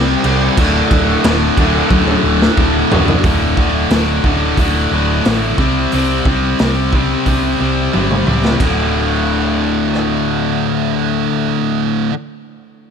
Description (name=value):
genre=hard rock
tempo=90 BPM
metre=4/4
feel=straight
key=unclear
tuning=A4 = 442 Hz
part: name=overdriven tonewheel organ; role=sustained chords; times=0.0-3.2 s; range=C4 to E5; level=-28 LUFS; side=right 1 dB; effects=none
part: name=biting overdriven guitar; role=riff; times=0.0-12.2 s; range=D2 to C4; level=-17 LUFS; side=left 13 dB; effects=none
part: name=high-gain distorted guitar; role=riff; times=0.0-12.1 s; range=D2 to C4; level=-18 LUFS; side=right 14 dB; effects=distortion
part: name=hollow-body short-scale fingered electric bass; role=bass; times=0.0-11.8 s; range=D1 to C#2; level=-19 LUFS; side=equal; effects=none
part: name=raw garage drum kit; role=drums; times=0.2-10.1 s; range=crash cymbal, hi-hat, kick drum, rim click, snare drum, toms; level=-17 LUFS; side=equal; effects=none
room=small room ambience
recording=none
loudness=-12 LUFS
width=side -7 dB against mid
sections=0.0-3.3 A section; 3.3-8.6 B section; 8.6-11.3 C section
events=drum fill 1.9-3.3, 7.9-8.6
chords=0.0 C5; 0.6 D5; 5.6 C5; 8.6 D5